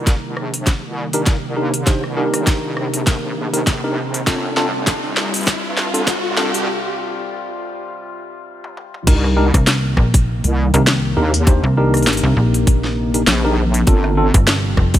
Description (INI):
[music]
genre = glitch hop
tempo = 100 BPM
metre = 4/4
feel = swing 57% on 16ths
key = C minor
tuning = A4 = 443 Hz
[part]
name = warbly tape-like pad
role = sustained chords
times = 0.0-15.0 s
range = C3 to F4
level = -25 LUFS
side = equal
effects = chorus, built-in reverb, sidechain pumping
[part]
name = wobble bass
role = bass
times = 0.0-14.3 s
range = F1 to G2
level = -21 LUFS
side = equal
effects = chorus, overdrive, high-pass filter
[part]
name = riser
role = sound effects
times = 2.1-6.7 s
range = none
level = -28 LUFS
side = right 1 dB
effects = none
[part]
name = drum and bass drum kit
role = drums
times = 0.1-15.0 s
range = crash cymbal, hi-hat, rim click, snare drum, toms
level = -21 LUFS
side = equal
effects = high-pass filter on hats, high-pass filter on snare, high-pass filter on toms, high-pass filter on cymbals
[part]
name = electronic kick drum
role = drums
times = 0.1-15.0 s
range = none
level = -14 LUFS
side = equal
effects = none
[part]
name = tine electric piano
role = stabs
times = 1.1-14.3 s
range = C4 to C5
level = -22 LUFS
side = equal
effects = overdrive, wide subtle chorus, sidechain pumping, digital delay
[part]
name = slap-like FM bass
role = bass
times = 9.5-15.0 s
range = F1 to C2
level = -17 LUFS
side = equal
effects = tube saturation
[sound]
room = moderate lush hall reverb, RT60 2.9 s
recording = bright 1980s-style digital production, high-pass filter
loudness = -14 LUFS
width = side -12 dB against mid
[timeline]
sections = 0.0-9.1 A section; 9.1-15.0 B section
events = build-up 0.0-9.1; drum fill 0.0-6.7, 8.6-9.1; riser 2.1-6.7; break 6.7-9.1; drop 9.1-15.0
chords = 0.0 Cm7; 4.3 G7sus4; 9.1 Cm7; 13.9 G7sus4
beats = 0.07 0.67 1.27 | 1.87 2.47 3.07 3.67 | 4.27 4.87 5.47 6.07 | 6.67 7.27 7.87 8.47 | 9.07 9.67 10.27 10.87 | 11.47 12.07 12.67 13.27 | 13.87 14.47